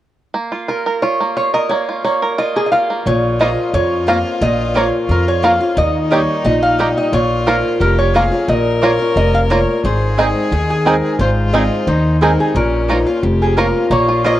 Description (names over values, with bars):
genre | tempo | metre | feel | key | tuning
bluegrass | 177 BPM | 4/4 | straight | Bb dorian | A4 = 440 Hz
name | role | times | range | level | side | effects
bluegrass banjo | arpeggios | 0.3-14.4 s | Bb3 to Bb4 | -22 LUFS | right 2 dB | none
lap resonator guitar | melody | 0.7-14.4 s | Ab4 to F5 | -17 LUFS | right 1 dB | tape echo
clear fiddle | second line | 3.1-14.4 s | Db4 to Bb4 | -22 LUFS | left 3 dB | none
picked swing-style acoustic guitar | accompaniment | 3.1-14.4 s | F2 to Ab4 | -19 LUFS | left 2 dB | none
upright bass | bass | 3.1-14.4 s | F1 to F2 | -18 LUFS | equal | none
mandolin | stabs | 3.4-14.3 s | Bb3 to Bb5 | -24 LUFS | right 3 dB | none
room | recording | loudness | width
light reverb | worn, warbling old tape, cassette tape, warbly pitch drift | -13 LUFS | side -13 dB against mid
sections
0.3-3.1 A section; 3.1-13.9 B section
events
none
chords
0.3 Bbm; 5.8 Eb; 7.1 Bbm; 9.8 Ab; 12.6 Bbm